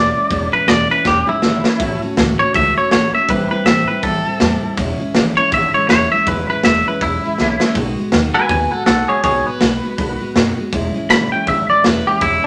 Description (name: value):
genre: rockabilly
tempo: 161 BPM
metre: 4/4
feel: swing 58% on 8ths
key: E major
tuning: A4 = 440 Hz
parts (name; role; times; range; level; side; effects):
- twangy electric guitar; melody; 0.0-12.5 s; E4 to B5; -18 LUFS; equal; none
- picked steel-string acoustic guitar; accompaniment; 0.0-12.5 s; E2 to F#4; -25 LUFS; equal; none
- upright bass; bass; 0.0-12.5 s; E1 to F#2; -27 LUFS; equal; none
- raw garage drum kit; drums; 0.3-12.3 s; hi-hat, kick drum, snare drum; -20 LUFS; equal; none
room: moderate studio reverb, RT60 0.9 s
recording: none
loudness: -16 LUFS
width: mono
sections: 0.0-12.5 A section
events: clean electric guitar solo 0.0-12.5; drum fill 1.1-1.8, 7.4-7.8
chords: 0.0 E6; 1.8 A6; 3.3 Am7; 4.8 E6; 7.8 B6; 10.7 E6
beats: | 0.31 0.69 1.06 1.43 | 1.80 2.18 2.55 2.92 | 3.29 3.67 4.04 4.41 | 4.78 5.16 5.53 5.90 | 6.27 6.64 7.02 7.39 | 7.76 8.13 8.50 8.88 | 9.25 9.62 9.99 10.36 | 10.73 11.11 11.48 11.85 | 12.22